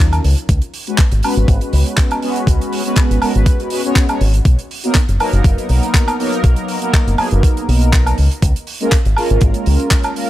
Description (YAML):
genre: nu-disco, nu disco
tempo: 121 BPM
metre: 4/4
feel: swing 54% on 16ths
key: unclear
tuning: A4 = 440 Hz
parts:
  - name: mellow synth brass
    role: accompaniment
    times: 0.0-10.3 s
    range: Gb3 to Db5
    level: -19 LUFS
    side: equal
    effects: chorus, phaser, analog delay
  - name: fingered electric bass with an envelope filter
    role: bass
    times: 0.0-9.8 s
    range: F#1 to Eb2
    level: -14 LUFS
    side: equal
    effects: sidechain pumping
  - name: damped 70s drum kit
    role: drums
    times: 0.0-10.3 s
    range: handclaps, hi-hat, woodblock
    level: -21 LUFS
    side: right 1 dB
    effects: studio reverb
  - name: electronic kick drum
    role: drums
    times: 0.5-10.0 s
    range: none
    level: -12 LUFS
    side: equal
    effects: overdrive, studio reverb
room: little or no reverb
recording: echo-heavy mix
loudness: -12 LUFS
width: side -14 dB against mid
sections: 0.0-10.3 A section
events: none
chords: 0.2 Db7sus4; 4.5 Bmaj7; 8.2 Bbm7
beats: | 0.49 0.98 1.48 1.98 | 2.47 2.97 3.46 3.96 | 4.46 4.95 5.45 5.94 | 6.44 6.94 7.43 7.93 | 8.42 8.92 9.41 9.91